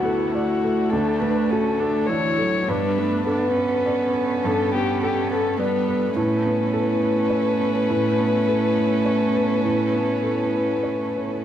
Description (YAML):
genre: neoclassical piano and strings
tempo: 103 BPM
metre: 3/4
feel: rubato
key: unclear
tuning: A4 = 441 Hz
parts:
  - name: dark violin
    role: melody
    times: 0.0-11.4 s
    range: F#4 to C#5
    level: -24 LUFS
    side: left 5 dB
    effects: none
  - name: warm cello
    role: second line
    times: 0.0-11.4 s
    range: E3 to B3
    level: -25 LUFS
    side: right 3 dB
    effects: none
  - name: felt-muted upright piano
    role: accompaniment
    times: 0.0-11.4 s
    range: D2 to D5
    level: -26 LUFS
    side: right 2 dB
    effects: none
  - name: warm viola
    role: accompaniment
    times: 0.0-11.4 s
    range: B3 to E4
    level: -27 LUFS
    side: right 3 dB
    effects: none
  - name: dark chamber string section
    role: sustained chords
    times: 0.0-11.4 s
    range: A3 to C#5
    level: -34 LUFS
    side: equal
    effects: none
room: light reverb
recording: dark, warm production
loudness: -19 LUFS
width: side -10 dB against mid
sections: 0.0-11.4 A section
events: none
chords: 0.0 D; 2.7 Gadd9; 6.2 Aadd9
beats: 0.33 | 0.92 1.51 2.10 | 2.69 3.28 3.86 | 4.44 5.01 5.59 | 6.17 6.74 7.32 | 7.90 8.48 9.07 | 9.64 10.23 10.84